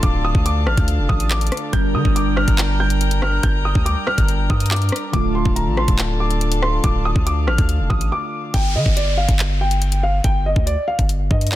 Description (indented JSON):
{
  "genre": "hip hop, drill",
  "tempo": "141 BPM",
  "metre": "4/4",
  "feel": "half-time",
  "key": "G minor",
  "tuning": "A4 = 440 Hz",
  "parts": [
    { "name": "dark grand piano", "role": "melody", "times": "0.0-11.6 s", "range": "D5 to G6", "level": "-24 LUFS", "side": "equal", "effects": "low-pass filter, digital delay" },
    { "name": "warbly lo-fi synth keys", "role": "accompaniment", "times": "0.0-8.6 s", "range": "D3 to Bb4", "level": "-26 LUFS", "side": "right 1 dB", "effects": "chorus, low-pass filter" },
    { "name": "dark chamber string section", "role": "sustained chords", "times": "0.0-8.5 s", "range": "D4 to Bb5", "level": "-27 LUFS", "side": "left 1 dB", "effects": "none" },
    { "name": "long sustained 808-style bass", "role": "bass", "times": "0.0-11.6 s", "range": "D1 to D3", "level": "-20 LUFS", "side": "equal", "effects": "none" },
    { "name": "drill drum kit", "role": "drums", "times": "0.0-11.6 s", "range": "handclaps, hi-hat, kick drum, rim click", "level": "-19 LUFS", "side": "equal", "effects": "overdrive" },
    { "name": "downlifter", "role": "sound effects", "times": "8.5-11.6 s", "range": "none", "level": "-29 LUFS", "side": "equal", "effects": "none" }
  ],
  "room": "digital ambience",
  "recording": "dense, heavily limited modern master",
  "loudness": "-16 LUFS",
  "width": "side -14 dB against mid",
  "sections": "0.0-8.5 A section; 8.5-11.6 B section",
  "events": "break 8.1-8.5",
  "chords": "0.0 Dm; 1.7 Gm; 5.1 Dm; 8.5 G5"
}